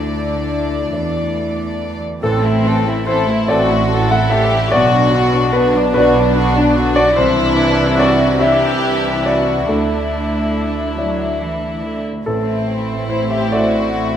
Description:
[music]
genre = cinematic, emotional film score for orchestra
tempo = 48 BPM (dotted quarters)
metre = 6/8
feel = rubato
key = A dorian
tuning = A4 = 440 Hz
[part]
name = warm symphonic violin section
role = melody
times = 0.0-14.2 s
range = D4 to D5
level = -22 LUFS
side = left 2 dB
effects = none
[part]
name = warm symphonic violin section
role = second line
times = 0.0-14.2 s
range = C4 to A4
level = -21 LUFS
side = left 2 dB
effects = none
[part]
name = dark symphonic viola section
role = accompaniment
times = 0.0-14.2 s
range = D3 to D4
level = -24 LUFS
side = right 1 dB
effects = none
[part]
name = warm grand piano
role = accompaniment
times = 0.0-14.2 s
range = A1 to F#5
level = -18 LUFS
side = left 1 dB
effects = none
[part]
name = dark French horn section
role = sustained chords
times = 0.0-1.9 s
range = D4 to E4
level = -26 LUFS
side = left 5 dB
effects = none
[part]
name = rich symphonic cello section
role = bass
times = 0.0-14.2 s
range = A2 to F#3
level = -23 LUFS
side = right 3 dB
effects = none
[part]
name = warm symphonic double bass section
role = bass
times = 0.0-14.2 s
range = A1 to E2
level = -23 LUFS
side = right 4 dB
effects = none
[sound]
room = moderate scoring stage reverb, RT60 1.6 s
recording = none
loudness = -13 LUFS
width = side -9 dB against mid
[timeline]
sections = 0.0-2.2 A section; 2.2-14.2 B section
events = none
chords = 0.0 Dsus2; 2.2 Am; 4.7 Bm; 7.2 Cadd9; 9.7 Dsus2; 12.3 Am

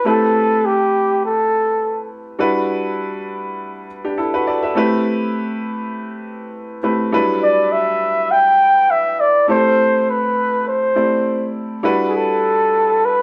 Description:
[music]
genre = soul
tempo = 102 BPM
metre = 4/4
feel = swing 54% on 16ths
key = E minor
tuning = A4 = 440 Hz
[part]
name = breathy flugelhorn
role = melody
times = 0.0-2.1, 7.4-13.2 s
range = G4 to G5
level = -17 LUFS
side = equal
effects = none
[part]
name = clear baby grand piano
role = accompaniment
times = 0.0-13.2 s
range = F#3 to E5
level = -22 LUFS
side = equal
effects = none
[sound]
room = wet studio reverb, RT60 0.9 s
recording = band playing live in one room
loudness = -17 LUFS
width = mono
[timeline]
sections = 0.0-13.2 A section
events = none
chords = 0.0 Am7; 2.4 Em7; 4.8 Am7; 7.1 Em7; 9.5 Am7; 11.8 Em7

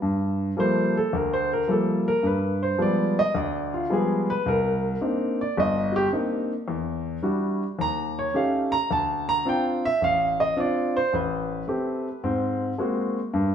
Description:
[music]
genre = solo jazz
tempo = 108 BPM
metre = 4/4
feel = swing 67% on 8ths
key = G minor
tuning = A4 = 439 Hz
[part]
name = warm baby grand piano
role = solo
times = 0.0-13.5 s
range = G1 to Bb5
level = -22 LUFS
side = equal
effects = none
[sound]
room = wet stone room reverb, RT60 1.3 s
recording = band playing live in one room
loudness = -22 LUFS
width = side -8 dB against mid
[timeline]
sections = 0.0-13.5 A section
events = grand piano solo 0.0-13.5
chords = 0.0 Gm9; 2.2 G7b9; 4.5 Cm9; 6.7 Em9; 7.8 Eb7#11; 8.9 Dm7; 11.1 Am9; 12.2 Ab9

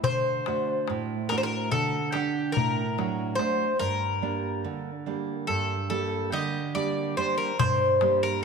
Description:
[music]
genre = greek folk, Greek bouzouki band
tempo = 143 BPM (eighths)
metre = 9/8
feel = straight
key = G minor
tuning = A4 = 440 Hz
[part]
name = Greek bouzouki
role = melody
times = 0.0-8.4 s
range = G4 to Eb5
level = -27 LUFS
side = left 2 dB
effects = none
[part]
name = nylon-string guitar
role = accompaniment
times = 0.0-8.4 s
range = G2 to F#5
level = -29 LUFS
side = right 5 dB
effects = none
[part]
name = darbuka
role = percussion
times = 0.0-8.3 s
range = none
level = -30 LUFS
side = left 7 dB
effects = none
[sound]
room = wet echo chamber reverb, RT60 1.7 s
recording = 1960s-style stereo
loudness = -25 LUFS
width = side -5 dB against mid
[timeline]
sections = 0.0-7.6 A section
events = none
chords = 0.0 D; 3.8 Gm

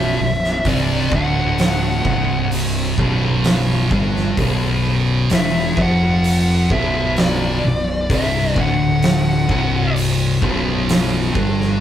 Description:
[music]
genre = stoner and doom metal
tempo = 64 BPM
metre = 4/4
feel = straight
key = B phrygian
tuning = A4 = 442 Hz
[part]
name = fuzz lead guitar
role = melody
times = 0.0-9.9 s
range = D5 to F#5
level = -22 LUFS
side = left 1 dB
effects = distortion
[part]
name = thick fuzz guitar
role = riff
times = 0.0-11.8 s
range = B1 to G3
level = -21 LUFS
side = left 6 dB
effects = distortion
[part]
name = thick fuzz guitar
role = riff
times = 0.0-11.8 s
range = B1 to G3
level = -20 LUFS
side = right 4 dB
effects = distortion
[part]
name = fuzz fingered electric bass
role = bass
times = 0.0-11.8 s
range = B0 to G1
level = -23 LUFS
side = equal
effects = overdrive
[part]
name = oversized low-tuned drum kit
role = drums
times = 0.4-11.7 s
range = hi-hat, kick drum, snare drum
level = -22 LUFS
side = equal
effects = none
[sound]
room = moderate large studio reverb, RT60 0.9 s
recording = band playing live in one room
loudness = -15 LUFS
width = side -10 dB against mid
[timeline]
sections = 0.0-11.8 A section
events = none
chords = 0.0 Bm

